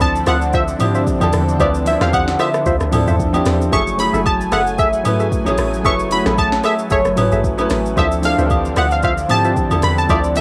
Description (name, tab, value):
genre	amapiano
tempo	113 BPM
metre	4/4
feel	swing 55% on 16ths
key	unclear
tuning	A4 = 440 Hz
part	analog pluck	melody	0.0-10.4 s	C#5 to C#6	-22 LUFS	equal	chorus, cassette tape, analog delay
part	clear concert grand piano	accompaniment	0.0-10.4 s	E3 to C5	-23 LUFS	equal	none
part	lush unison pad	sustained chords	0.0-10.4 s	D3 to G#5	-27 LUFS	equal	chorus, phaser, sidechain pumping
part	deep log drum bass	bass	0.0-10.4 s	F#1 to E2	-24 LUFS	equal	none
part	smooth R&B drum kit	drums	0.0-10.4 s	hi-hat, kick drum, rim click, shaker, snare drum, toms	-24 LUFS	equal	overdrive, cassette tape
part	agogo bells	percussion	0.0-10.2 s	none	-28 LUFS	equal	none
part	percussive organ stab	stabs	0.3-10.2 s	F4 to E5	-25 LUFS	equal	chorus, analog delay
room	digital ambience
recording	home recording on cassette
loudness	-16 LUFS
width	mono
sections	0.0-10.4 A section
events	none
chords	0.0 Dm9; 3.7 F#m9; 8.0 Dm9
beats	0.01 0.54 1.07 | 1.60 2.13 2.66 3.19 | 3.73 4.26 4.79 5.32 | 5.85 6.38 6.91 7.44 | 7.97 8.50 9.04 9.57 | 10.10